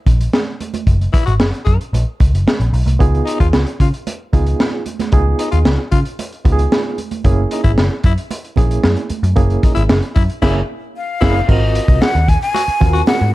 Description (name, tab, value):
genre	funk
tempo	113 BPM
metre	4/4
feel	straight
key	unclear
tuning	A4 = 440 Hz
part	vintage muted picked electric bass	bass	0.1-13.3 s	Gb1 to Db3	-15 LUFS	equal	none
part	crunchy breakbeat drum kit	drums	0.1-13.2 s	crash cymbal, hi-hat, kick drum, snare drum	-16 LUFS	equal	none
part	congas	percussion	0.1-13.2 s	none	-26 LUFS	right 7 dB	none
part	growling tenor saxophone	second line	1.1-13.0 s	Eb4 to Ab4	-24 LUFS	left 6 dB	plate reverb
part	barky reed electric piano	stabs	3.0-13.3 s	Bb3 to Bb4	-22 LUFS	right 4 dB	overdrive, fast tremolo, tube saturation, plate reverb
part	breathy jazz flute	melody	11.0-13.3 s	Eb5 to Ab5	-18 LUFS	left 1 dB	plate reverb
room	little or no reverb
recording	dark, warm production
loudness	-13 LUFS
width	side -17 dB against mid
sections	0.0-11.5 A section; 11.5-13.3 B section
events	band accent 10.4-11.5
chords	0.0 Gb; 3.0 Db9; 7.3 Gb9; 11.5 Ab13